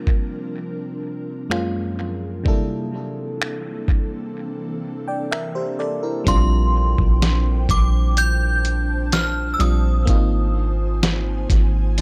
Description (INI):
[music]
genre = contemporary R&B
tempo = 63 BPM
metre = 4/4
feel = straight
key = unclear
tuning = A4 = 440 Hz
[part]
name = FM electric piano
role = accompaniment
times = 0.0-12.0 s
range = Gb2 to G5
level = -29 LUFS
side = equal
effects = chorus, analog delay
[part]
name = ethereal airy pad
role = sustained chords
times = 0.0-12.0 s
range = E3 to A5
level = -34 LUFS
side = equal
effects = ensemble chorus, built-in reverb
[part]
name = dusty soul sampler-style drum kit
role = drums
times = 0.1-12.0 s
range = finger snaps, hi-hat, kick drum, snare drum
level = -22 LUFS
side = equal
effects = none
[part]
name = synth chime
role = melody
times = 6.3-11.0 s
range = C6 to G6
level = -27 LUFS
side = equal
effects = ensemble chorus, phaser, tremolo, analog delay
[part]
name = soft 808-style bass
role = bass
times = 6.3-12.0 s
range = Ab1 to Bb1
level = -21 LUFS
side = equal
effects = none
[part]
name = picked steel-string acoustic guitar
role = arpeggios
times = 12.0 s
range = D4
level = -28 LUFS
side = equal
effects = none
[sound]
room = light reverb, digital ambience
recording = echo-heavy mix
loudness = -21 LUFS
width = mono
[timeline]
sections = 0.0-6.3 A section; 6.3-12.0 B section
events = none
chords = 0.0 C9sus4; 1.5 Gbmaj9; 2.5 C13; 6.3 Bb69; 10.1 Ab6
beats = 0.55 1.50 | 2.46 3.41 4.36 5.31 | 6.27 7.22 8.17 9.12 | 10.08 11.03 11.98